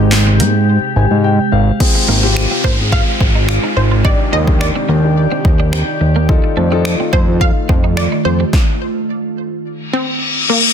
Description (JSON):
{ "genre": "dance-pop", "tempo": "107 BPM", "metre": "4/4", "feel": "straight", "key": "unclear", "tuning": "A4 = 439 Hz", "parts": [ { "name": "wide unison pluck", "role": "melody", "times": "0.0-10.6 s", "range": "Bb3 to F5", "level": "-21 LUFS", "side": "right 1 dB", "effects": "ping-pong delay" }, { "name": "dark grand piano", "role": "accompaniment", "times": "0.0-8.2 s", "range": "Ab3 to Ab5", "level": "-22 LUFS", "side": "left 8 dB", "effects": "sidechain pumping" }, { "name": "glassy FM pad", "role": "sustained chords", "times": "0.0-8.5 s", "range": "C3 to D5", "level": "-20 LUFS", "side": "right 2 dB", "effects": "ensemble chorus, built-in reverb, sidechain pumping" }, { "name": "fat analog bass", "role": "bass", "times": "0.0-8.4 s", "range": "Ab1 to Ab2", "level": "-14 LUFS", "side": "equal", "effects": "sidechain pumping" }, { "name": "twelve-string electric guitar", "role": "riff", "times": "0.1-8.5 s", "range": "A3 to G4", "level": "-24 LUFS", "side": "right 7 dB", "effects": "analog chorus" }, { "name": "punchy analog drum machine", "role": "drums", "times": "0.1-8.7 s", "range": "crash cymbal, finger snaps, handclaps, hi-hat, kick drum, snare drum", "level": "-15 LUFS", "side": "equal", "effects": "overdrive" }, { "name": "downlifter and reverse cymbal", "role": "sound effects", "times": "1.8-10.7 s", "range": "none", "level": "-18 LUFS", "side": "left 2 dB", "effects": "none" } ], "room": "little or no reverb", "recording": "dense, heavily limited modern master", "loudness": "-11 LUFS", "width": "side -8 dB against mid", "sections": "0.0-1.8 A section; 1.8-10.7 B section", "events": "drums muted 0.7-1.8; grand piano fill 0.7-1.8; stop 8.5-10.7; reverse cymbal 9.9-10.7", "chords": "0.0 Abmaj7; 4.0 Ebmaj7; 6.3 F7; 8.5 N.C.", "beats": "0.12 0.68 1.24 | 1.80 2.36 2.92 3.49 | 4.05 4.61 5.17 5.73 | 6.29 6.85 7.41 7.97 | 8.53 9.09 9.65 10.21" }